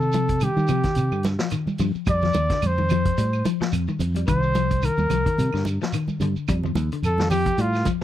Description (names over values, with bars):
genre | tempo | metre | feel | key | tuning
afrobeat | 109 BPM | 4/4 | swing 56% on 16ths | C dorian | A4 = 438 Hz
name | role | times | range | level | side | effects
warm trumpet | melody | 0.0-7.9 s | F4 to D5 | -24 LUFS | equal | none
clean electric guitar | arpeggios | 0.0-8.0 s | D3 to G3 | -27 LUFS | left 7 dB | warbly pitch drift
fingered electric bass | bass | 0.0-7.8 s | C2 to Eb3 | -24 LUFS | equal | none
shekere | percussion | 0.0-8.0 s | none | -33 LUFS | right 3 dB | none
vintage drum kit | drums | 0.1-8.0 s | hi-hat, kick drum, snare drum | -28 LUFS | equal | none
congas | percussion | 0.1-8.0 s | none | -28 LUFS | right 4 dB | none
claves | percussion | 0.4-7.9 s | none | -39 LUFS | right 13 dB | none
room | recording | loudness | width
small room ambience | dry, close 1970s-style studio recording | -20 LUFS | side -12 dB against mid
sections
0.0-8.0 A section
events
trumpet solo 0.0-8.0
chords
0.0 Cm; 2.1 F7(no3); 4.3 Cm9; 6.5 F7